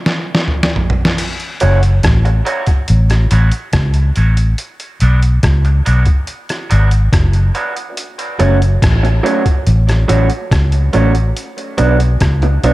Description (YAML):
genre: dub reggae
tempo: 71 BPM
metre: 4/4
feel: straight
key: F# minor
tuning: A4 = 440 Hz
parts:
  - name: trip hop sampler-style drum kit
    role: drums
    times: 0.1-12.7 s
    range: crash cymbal, hi-hat, kick drum, rim click, snare drum, toms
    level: -16 LUFS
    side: equal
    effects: none
  - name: electric guitar through a small old amp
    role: accompaniment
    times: 1.6-12.7 s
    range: F#3 to F#4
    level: -19 LUFS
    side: right 2 dB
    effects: spring reverb, high-pass filter, tape echo
  - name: vintage muted fingered electric bass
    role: bass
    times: 1.6-12.7 s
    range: F#1 to C#2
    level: -11 LUFS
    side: equal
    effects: none
room: digital ambience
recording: none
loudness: -11 LUFS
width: side -18 dB against mid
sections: 0.0-1.2 A section; 1.2-12.7 B section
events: break 0.0-1.2; drum fill 0.0-1.2; filter sweep on clean electric guitar 0.0-8.0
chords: 0.0 N.C.; 1.2 F#m; 4.6 Bm; 8.0 F#m; 11.4 Bm